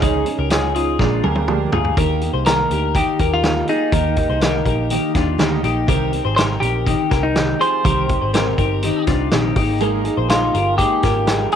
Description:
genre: jangly indie pop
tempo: 123 BPM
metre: 4/4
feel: straight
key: Eb major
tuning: A4 = 440 Hz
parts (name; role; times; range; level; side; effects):
- fingerpicked steel-string acoustic guitar; accompaniment; 0.0-11.6 s; Bb2 to Ab4; -24 LUFS; right 10 dB; none
- warm upright piano; accompaniment; 0.0-2.0, 9.8-11.6 s; Bb3 to Bb4; -25 LUFS; right 11 dB; none
- twelve-string electric guitar; arpeggios; 0.0-11.6 s; D4 to C5; -22 LUFS; left 13 dB; wide subtle chorus
- vintage muted picked electric bass; bass; 0.0-11.5 s; G1 to Eb2; -22 LUFS; equal; none
- vintage drum kit; drums; 0.0-11.6 s; hi-hat, kick drum, snare drum, toms; -21 LUFS; equal; none
- semi-hollow electric guitar; melody; 2.5-11.6 s; Eb4 to C5; -20 LUFS; left 1 dB; lush chorus, slapback echo
room: light reverb, studio reverb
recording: 1960s-style stereo with parts hard left and right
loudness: -15 LUFS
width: side -8 dB against mid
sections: 0.0-2.0 A section; 2.0-11.6 B section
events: drum fill 1.0-2.0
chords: 0.0 Dbsus2; 1.0 Bb7; 2.0 Eb; 5.9 Cm; 9.6 Absus2

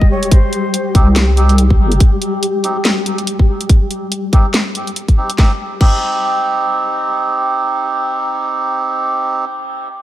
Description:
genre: deep dubstep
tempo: 142 BPM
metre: 4/4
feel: swing 58% on 16ths, half-time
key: C minor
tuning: A4 = 440 Hz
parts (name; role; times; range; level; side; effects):
- breathy shakuhachi; melody; 0.0-0.9 s; C5 to Db5; -24 LUFS; left 1 dB; dub echo
- electronic kick drum; drums; 0.0-5.9 s; none; -10 LUFS; equal; none
- flickering grainy texture; texture; 0.0-5.4 s; G3 to G4; -21 LUFS; left 2 dB; built-in reverb
- garage drum kit; drums; 0.2-5.9 s; crash cymbal, hi-hat, snare drum; -19 LUFS; equal; none
- melodica; stabs; 0.9-9.4 s; C4 to G4; -18 LUFS; right 2 dB; dub echo
- deep soft wobble bass; bass; 0.9-2.0 s; G1 to C2; -11 LUFS; equal; chorus
room: light reverb, digital ambience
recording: none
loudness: -12 LUFS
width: side -13 dB against mid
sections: 0.0-5.4 A section; 5.4-8.8 B section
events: none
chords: 0.0 Cm

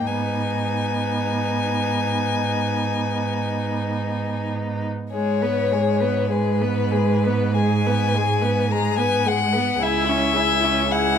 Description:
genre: classical, slow romantic movement for string quartet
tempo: 46-56 BPM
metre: 4/4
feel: rubato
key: G# minor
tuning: A4 = 441 Hz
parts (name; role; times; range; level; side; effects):
- rich violin; melody; 0.0-11.2 s; B4 to A#5; -24 LUFS; left 8 dB; none
- rich violin; second line; 0.0-11.2 s; D#4 to B4; -27 LUFS; left 4 dB; none
- rich viola; accompaniment; 0.0-11.2 s; G#3 to E4; -25 LUFS; right 3 dB; none
- clear cello; bass; 0.0-11.2 s; C#2 to G#2; -24 LUFS; right 4 dB; none
room: moderate large studio reverb, RT60 1.0 s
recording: none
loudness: -19 LUFS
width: side -8 dB against mid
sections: 0.0-5.1 A section; 5.1-11.2 A section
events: none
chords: 0.1 G#m; 9.8 C#m

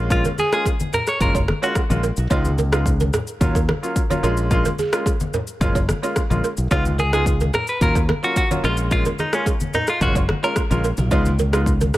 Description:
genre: afrobeats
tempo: 109 BPM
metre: 4/4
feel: straight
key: unclear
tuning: A4 = 440 Hz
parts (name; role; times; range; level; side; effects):
- clear baby grand piano; accompaniment; 0.0-11.7 s; Gb3 to F4; -25 LUFS; equal; none
- modern bright fingered electric bass; bass; 0.0-11.9 s; Gb1 to Eb2; -21 LUFS; equal; none
- direct-recorded clean electric guitar; melody; 0.1-1.7, 6.7-10.5 s; Db4 to Db5; -23 LUFS; equal; spring reverb, digital delay
- deep house drum kit; drums; 0.1-12.0 s; kick drum, rim click, shaker, toms; -22 LUFS; equal; overdrive
- balafon; riff; 0.3-12.0 s; Ab4 to Db5; -28 LUFS; right 6 dB; digital delay
- congas; percussion; 0.3-12.0 s; none; -27 LUFS; left 2 dB; none
room: little or no reverb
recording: none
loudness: -17 LUFS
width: side -16 dB against mid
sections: 0.0-12.0 A section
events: none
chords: 0.0 Bbm7; 1.2 Gbmaj7; 2.3 Db7; 3.4 Ebm7; 4.2 Bbm7; 5.6 Gbmaj7; 6.7 Db7; 7.8 Ebm7; 8.6 Bbm7; 10.0 Gbmaj7; 11.1 Db7

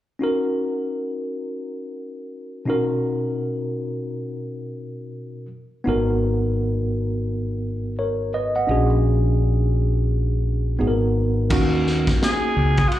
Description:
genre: hip hop, jazz-hop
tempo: 85 BPM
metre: 4/4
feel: swing 61% on 16ths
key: unclear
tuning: A4 = 438 Hz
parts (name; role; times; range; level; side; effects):
- mellow tine electric piano; accompaniment; 0.2-12.7 s; B2 to F#5; -24 LUFS; equal; medium stereo tremolo, slapback echo
- mellow fretless electric bass; bass; 5.9-12.8 s; G#1 to D#2; -21 LUFS; equal; none
- vintage drum kit; drums; 11.5-13.0 s; crash cymbal, hi-hat, kick drum, ride cymbal, snare drum; -22 LUFS; equal; none
- clear alto saxophone; melody; 12.2-13.0 s; E#4 to G#4; -22 LUFS; left 1 dB; slapback echo
room: light reverb, studio reverb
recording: live gig heard through the venue's PA, club reverb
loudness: -20 LUFS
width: side -13 dB against mid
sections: 0.2-11.5 A section; 11.5-13.0 B section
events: none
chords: 0.2 D#m7; 2.7 Bmaj9; 5.9 G#m9; 8.7 A#7alt; 10.8 G#m9; 11.5 D#m7

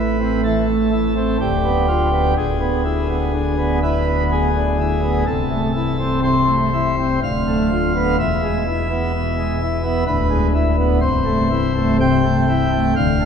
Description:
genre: classical, chorale-style piece for pipe organ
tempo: 62 BPM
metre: 3/4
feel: rubato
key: A minor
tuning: A4 = 440 Hz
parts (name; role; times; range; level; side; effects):
- pipe organ, principal chorus; solo; 0.0-13.3 s; C1 to G5; -16 LUFS; equal; none
room: wet church reverb, RT60 3.0 s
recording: recorded in a church or concert hall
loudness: -16 LUFS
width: side -7 dB against mid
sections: 0.0-13.3 A section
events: none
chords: 0.0 Am; 1.4 Bdim/D; 2.4 E7/D; 5.3 Am/C; 7.2 Bm7b5/D; 8.2 E; 10.1 E7/D; 11.0 Am/C

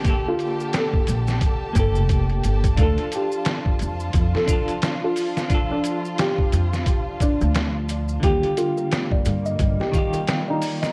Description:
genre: trip hop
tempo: 88 BPM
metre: 4/4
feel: swing 59% on 16ths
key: unclear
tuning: A4 = 440 Hz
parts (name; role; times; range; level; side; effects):
- felt-muted upright piano; melody; 0.0-10.9 s; D4 to A4; -29 LUFS; equal; vintage 12-bit sampler grit, dub echo
- clean electric guitar; accompaniment; 0.0-10.9 s; D3 to A4; -32 LUFS; equal; tremolo
- rich studio string section; sustained chords; 0.0-10.9 s; D3 to A5; -34 LUFS; equal; vintage 12-bit sampler grit
- trip hop sampler-style drum kit; drums; 0.0-10.9 s; hi-hat, kick drum, snare drum; -25 LUFS; equal; overdrive, studio reverb
- maracas; percussion; 0.1-10.9 s; none; -42 LUFS; equal; none
- upright bass; bass; 1.1-9.8 s; F1 to G2; -24 LUFS; equal; none
- music box; arpeggios; 8.4-10.9 s; G4 to Eb5; -32 LUFS; equal; vintage 12-bit sampler grit, tape echo
room: small room ambience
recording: worn, warbling old tape, cassette tape, warbly pitch drift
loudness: -22 LUFS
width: mono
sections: 0.0-10.9 A section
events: none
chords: 0.0 Gmadd9; 2.8 Dm; 8.2 Ebmaj7

